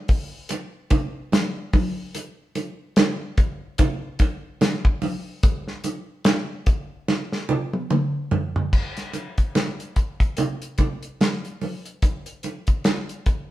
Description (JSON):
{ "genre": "soul", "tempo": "73 BPM", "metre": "4/4", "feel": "swing 58% on 16ths", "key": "none", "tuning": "none", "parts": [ { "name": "warm soul drum kit", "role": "drums", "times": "0.1-13.5 s", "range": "crash cymbal, hi-hat, kick drum, snare drum, toms", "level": "-21 LUFS", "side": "equal", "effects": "none" }, { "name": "congas", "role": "percussion", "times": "0.5-13.1 s", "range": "none", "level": "-26 LUFS", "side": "right 3 dB", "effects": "none" } ], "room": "moderate stone room reverb, RT60 1.0 s", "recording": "band playing live in one room", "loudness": "-22 LUFS", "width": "side -15 dB against mid", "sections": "0.0-8.7 A section; 8.7-13.5 B section", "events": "drum fill 7.1-8.7", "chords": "none", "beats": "0.51 1.33 | 2.15 2.97 3.79 4.61 | 5.43 6.26 7.08 7.90 | 8.73 9.55 10.38 11.20 | 12.03 12.85" }